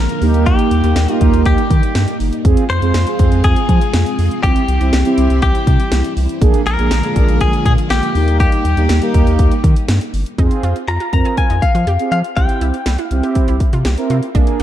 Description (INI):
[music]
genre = synth-pop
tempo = 121 BPM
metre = 4/4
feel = straight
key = F minor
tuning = A4 = 440 Hz
[part]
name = direct-recorded clean electric guitar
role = melody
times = 0.0-13.3 s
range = G4 to Bb5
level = -21 LUFS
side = left 4 dB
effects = ping-pong delay
[part]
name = string machine, full ensemble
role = sustained chords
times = 0.0-10.4 s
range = D3 to F4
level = -22 LUFS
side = equal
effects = ensemble chorus
[part]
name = round analog bass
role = bass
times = 0.0-14.6 s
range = G1 to F3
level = -15 LUFS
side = equal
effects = none
[part]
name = house drum kit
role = drums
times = 0.1-14.6 s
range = hi-hat, kick drum, snare drum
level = -16 LUFS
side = equal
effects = none
[part]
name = mellow synth brass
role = accompaniment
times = 0.2-14.6 s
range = Bb3 to Bb4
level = -20 LUFS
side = right 4 dB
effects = chorus
[part]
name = analog pluck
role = arpeggios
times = 10.4-14.6 s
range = C4 to Ab4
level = -28 LUFS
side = right 3 dB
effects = chorus, ping-pong delay
[sound]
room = light reverb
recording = dark, warm production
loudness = -12 LUFS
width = side -12 dB against mid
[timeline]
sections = 0.0-10.4 A section; 10.4-14.6 B section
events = none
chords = 0.2 Eb; 2.4 Fm; 4.4 C; 6.4 Bb7; 8.2 Eb; 10.4 Fm; 12.4 C